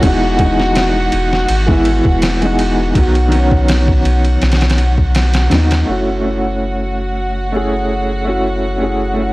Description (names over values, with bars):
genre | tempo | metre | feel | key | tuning
trip hop | 82 BPM | 4/4 | swing 53% on 16ths | F# dorian | A4 = 440 Hz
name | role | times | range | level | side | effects
warm upright piano | accompaniment | 0.0-9.3 s | D#3 to G#4 | -17 LUFS | equal | tremolo, vintage 12-bit sampler grit, low-pass filter, tape echo
dark studio violin section | sustained chords | 0.0-9.3 s | F#4 to F#5 | -20 LUFS | equal | none
soft dub sub bass | bass | 0.0-9.3 s | E1 to D#2 | -16 LUFS | equal | none
trip hop sampler-style drum kit | drums | 0.0-5.9 s | kick drum, ride cymbal, snare drum | -17 LUFS | equal | none
room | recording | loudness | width
little or no reverb | dry, gritty hardware recording, vinyl crackle | -12 LUFS | side -20 dB against mid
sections
0.0-5.9 A section; 5.9-9.3 B section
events
none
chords
0.0 Emaj7; 3.0 B; 5.9 F#m7